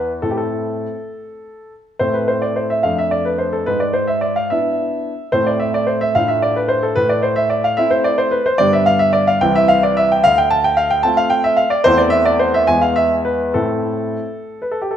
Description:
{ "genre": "classical-period piano sonatina", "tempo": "67-75 BPM (dotted quarters)", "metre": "6/8", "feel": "rubato", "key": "A minor", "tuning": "A4 = 440 Hz", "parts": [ { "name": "warm grand piano", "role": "solo", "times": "0.0-15.0 s", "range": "C2 to A5", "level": "-14 LUFS", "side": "equal", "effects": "none" } ], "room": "wet recital hall reverb, RT60 1.4 s", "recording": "none", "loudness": "-14 LUFS", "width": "side -9 dB against mid", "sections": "0.0-2.0 A section; 2.0-15.0 B section", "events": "none", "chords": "0.2 Am; 2.8 Dm/F; 3.7 E7/G#; 5.3 Am; 6.2 Dm/A; 8.6 G; 9.4 C; 10.2 Dm7; 11.8 Am/E; 12.7 E; 13.5 Am" }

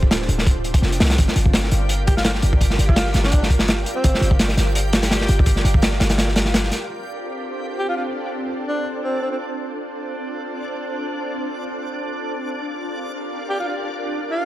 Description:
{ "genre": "drum and bass, jungle", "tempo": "168 BPM", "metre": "4/4", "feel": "swing 54% on 16ths", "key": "unclear", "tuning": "A4 = 441 Hz", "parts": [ { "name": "ethereal airy pad", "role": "sustained chords", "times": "0.0-14.5 s", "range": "C4 to F5", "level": "-28 LUFS", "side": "right 1 dB", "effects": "ensemble chorus, built-in reverb" }, { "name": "warm 808-style bass", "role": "bass", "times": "0.0-6.7 s", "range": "D1 to C2", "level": "-20 LUFS", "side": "equal", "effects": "none" }, { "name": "crunchy breakbeat drum kit", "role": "drums", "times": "0.0-6.8 s", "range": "hi-hat, kick drum, snare drum", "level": "-18 LUFS", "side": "equal", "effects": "none" }, { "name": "backwards swelling texture", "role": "texture", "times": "0.0-14.5 s", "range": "D4 to G5", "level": "-30 LUFS", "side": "right 1 dB", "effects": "built-in reverb" }, { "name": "breathy alto saxophone", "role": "melody", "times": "2.1-4.3, 7.8-9.4, 13.5-14.5 s", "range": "C4 to G4", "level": "-26 LUFS", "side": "equal", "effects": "dub echo" } ], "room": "light reverb", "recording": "none", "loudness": "-18 LUFS", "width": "side -14 dB against mid", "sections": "0.0-6.9 A section; 6.9-14.5 B section", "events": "none", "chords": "0.0 Dm7; 1.2 Gm7; 6.9 Dm7; 12.6 Gm7" }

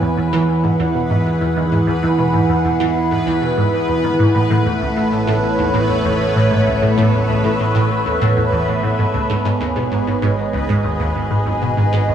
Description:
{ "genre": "ambient, sequencer-driven space music", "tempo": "97 BPM", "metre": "4/4", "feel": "straight", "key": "unclear", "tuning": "A4 = 438 Hz", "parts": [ { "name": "phased analog pad", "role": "sustained chords", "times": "0.0-12.1 s", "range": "E3 to G#5", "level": "-18 LUFS", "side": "equal", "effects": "phaser, chorus" }, { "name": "resonant blip pluck", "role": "riff", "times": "0.0-12.1 s", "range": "C#2 to E3", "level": "-19 LUFS", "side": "right 1 dB", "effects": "phaser, ensemble chorus, analog delay" }, { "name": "fat analog bass", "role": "bass", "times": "0.0-12.1 s", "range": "G#1 to E2", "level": "-23 LUFS", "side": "right 1 dB", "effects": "none" }, { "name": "bubbling stepped-filter texture", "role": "texture", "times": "0.0-12.1 s", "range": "B3 to B4", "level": "-24 LUFS", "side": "right 1 dB", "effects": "chorus, built-in reverb" } ], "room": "moderate plate reverb, RT60 2.9 s", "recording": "studio reverb", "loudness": "-14 LUFS", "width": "side -9 dB against mid", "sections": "0.0-12.1 A section", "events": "none", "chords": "0.0 Eadd9; 4.3 Aadd9; 9.3 G#m" }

